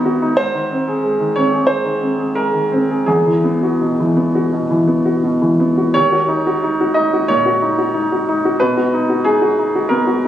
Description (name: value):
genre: neoclassical minimalist piano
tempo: 81-93 BPM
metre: 4/4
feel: rubato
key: Eb phrygian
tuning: A4 = 445 Hz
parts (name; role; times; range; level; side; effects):
- warm upright piano; solo; 0.0-10.3 s; Eb2 to Fb5; -14 LUFS; equal; none
room: light reverb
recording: recorded on a phone in the room, club reverb, compression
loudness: -14 LUFS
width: side -11 dB against mid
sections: 0.0-5.9 A section; 5.9-10.3 A section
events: none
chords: 0.4 Ab; 3.1 Eadd9; 5.9 Ebm; 8.6 B